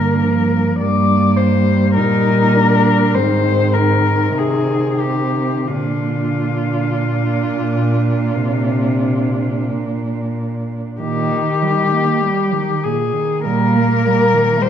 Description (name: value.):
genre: classical, lyrical piece for cello ensemble.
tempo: 44-53 BPM.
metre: 4/4.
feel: rubato.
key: Eb major.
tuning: A4 = 440 Hz.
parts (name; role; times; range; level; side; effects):
muted cello; melody; 0.0-14.7 s; F4 to D5; -19 LUFS; left 6 dB; none.
muted cello; second line; 0.0-14.7 s; Bb2 to Eb4; -21 LUFS; right 7 dB; none.
muted cello; accompaniment; 0.0-14.7 s; Bb2 to Bb3; -20 LUFS; left 1 dB; none.
muted cello; bass; 0.0-14.4 s; G2 to Eb3; -19 LUFS; right 1 dB; none.
room: wet recital hall reverb, RT60 1.5 s.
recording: dark, warm production, faint mains hum.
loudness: -14 LUFS.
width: side -9 dB against mid.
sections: 0.0-11.0 A section; 11.0-14.7 B section.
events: none.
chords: 0.0 Gm7; 0.8 Gm; 3.1 Ab; 5.7 Bb; 11.0 Eb/Bb.